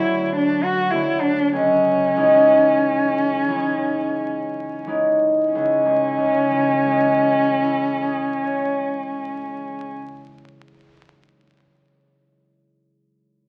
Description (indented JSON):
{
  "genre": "classical, impressionist duo for cello and harp",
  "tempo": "41-59 BPM",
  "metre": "3/4",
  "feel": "rubato",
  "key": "C# minor",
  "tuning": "A4 = 440 Hz",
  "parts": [
    { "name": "warm cello", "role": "melody", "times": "0.0-9.9 s", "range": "C#4 to F#4", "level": "-23 LUFS", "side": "equal", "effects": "none" },
    { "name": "concert harp", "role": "accompaniment", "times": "0.0-11.0 s", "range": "C#2 to C#5", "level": "-22 LUFS", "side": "equal", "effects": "none" }
  ],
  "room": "wet large studio reverb, RT60 1.0 s",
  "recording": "very old 78 rpm record, vinyl crackle",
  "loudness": "-19 LUFS",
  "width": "mono",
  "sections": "0.0-5.5 A section; 5.5-9.6 B section",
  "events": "slowing down 0.0-5.5",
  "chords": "0.0 Dmaj7; 1.5 C#madd9; 5.5 C#m"
}